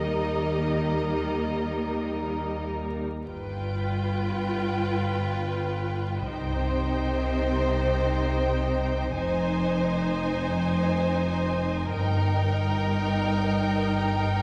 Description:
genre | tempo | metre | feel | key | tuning
classical, slow romantic movement for string orchestra | free time | none | none | Eb major | A4 = 440 Hz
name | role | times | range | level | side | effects
rich studio violin section | melody | 0.0-14.4 s | Eb5 to Ab5 | -38 LUFS | equal | none
rich studio violin section | second line | 0.0-14.4 s | Eb4 to C5 | -34 LUFS | equal | none
rich studio viola section | accompaniment | 0.0-14.4 s | G3 to F4 | -34 LUFS | equal | none
clear studio double bass section | bass | 0.0-14.4 s | F1 to Eb2 | -32 LUFS | equal | none
warm studio cello section | bass | 0.0-14.4 s | F2 to Eb3 | -32 LUFS | equal | none
room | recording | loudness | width
wet scoring stage reverb, RT60 1.8 s | heard from further back in the room, vinyl crackle | -27 LUFS | mono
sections
0.0-3.3 A section; 3.3-14.4 B section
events
none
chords
0.0 Eb; 3.3 G7; 6.3 Cm; 9.2 Fm7; 11.9 Eb/G

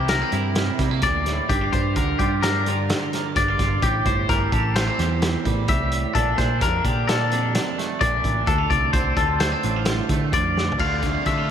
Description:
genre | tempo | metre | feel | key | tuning
math rock and midwest emo | 129 BPM | 5/4 | straight | D minor | A4 = 440 Hz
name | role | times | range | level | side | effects
twangy electric guitar | accompaniment | 0.0-11.5 s | D2 to G4 | -26 LUFS | right 8 dB | lush chorus
twangy electric guitar | arpeggios | 0.0-11.5 s | G4 to F5 | -24 LUFS | left 5 dB | none
picked electric bass | bass | 0.0-11.5 s | G1 to D3 | -25 LUFS | equal | none
loose indie drum kit | drums | 0.1-11.4 s | crash cymbal, hi-hat, kick drum, snare drum, toms | -25 LUFS | equal | none
crunchy overdriven guitar | riff | 10.8-11.5 s | D3 to F4 | -28 LUFS | equal | none
room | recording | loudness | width
moderate huge ambient reverb, RT60 4.2 s | dreamy mix soaked in reverb | -19 LUFS | side -8 dB against mid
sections
0.0-10.8 A section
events
drum fill 10.6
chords
0.0 C7; 1.5 Gm7; 3.8 Am7; 6.2 Bbmaj7; 8.5 Dm7

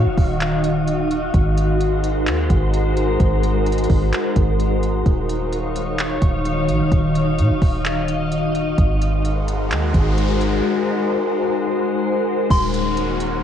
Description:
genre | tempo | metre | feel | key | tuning
hip hop, atmospheric cloud-rap | 129 BPM | 4/4 | half-time | Eb dorian | A4 = 436 Hz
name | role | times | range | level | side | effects
glassy FM pad | sustained chords | 0.0-13.4 s | Eb3 to F5 | -20 LUFS | left 2 dB | ensemble chorus, built-in reverb, sidechain pumping, cassette tape, plate reverb
soft 808-style bass | bass | 0.0-13.4 s | Eb1 to Bb2 | -21 LUFS | equal | none
downlifter and noise sweep | sound effects | 0.0-1.3, 9.1-13.4 s | none | -34 LUFS | right 1 dB | none
wind-like tuned noise texture | texture | 0.0-13.4 s | Gb4 to F6 | -31 LUFS | equal | built-in reverb, cassette tape, plate reverb
smooth R&B drum kit | drums | 0.2-13.3 s | handclaps, hi-hat, kick drum | -20 LUFS | equal | cassette tape
soft synth bell | melody | 12.5-13.4 s | C6 | -24 LUFS | left 2 dB | chorus, low-pass filter, cassette tape, analog delay, plate reverb
room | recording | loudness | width
moderate booth ambience, RT60 0.2 s | home recording on cassette | -17 LUFS | side -9 dB against mid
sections
0.0-12.5 A section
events
noise sweep 9.1-12.5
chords
0.0 Ebm9; 1.3 Ab7; 5.1 Ebm9; 8.8 Ab7; 12.5 Ebm9

